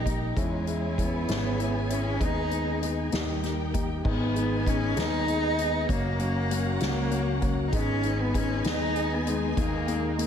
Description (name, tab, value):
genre	six-eight pop ballad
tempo	65 BPM (dotted quarters)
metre	6/8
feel	straight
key	G# minor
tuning	A4 = 441 Hz
part	warm cello	melody	0.0-10.3 s	G#3 to D#4	-30 LUFS	right 1 dB	ping-pong delay
part	warm studio string section	sustained chords	0.0-10.3 s	C#4 to G#5	-36 LUFS	left 1 dB	none
part	fretless electric bass	bass	0.0-10.3 s	F#1 to E2	-30 LUFS	equal	none
part	dark upright piano	accompaniment	0.1-10.3 s	F#3 to E4	-31 LUFS	left 4 dB	slapback echo
part	soft-mallet drum kit	drums	0.1-10.3 s	crash cymbal, hi-hat, kick drum, snare drum	-32 LUFS	equal	none
room	moderate concert hall reverb, RT60 2.0 s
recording	big arena sound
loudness	-25 LUFS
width	side -8 dB against mid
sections	0.0-4.0 A section; 4.0-10.3 B section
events	none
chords	0.4 C#m/E; 2.2 G#m/D#; 3.1 D#; 4.0 G#m; 5.9 F#; 7.7 G#m; 9.6 D#sus4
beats	| 0.36 1.28 | 2.21 3.13 | 4.05 4.97 | 5.89 6.81 | 7.73 8.65 | 9.57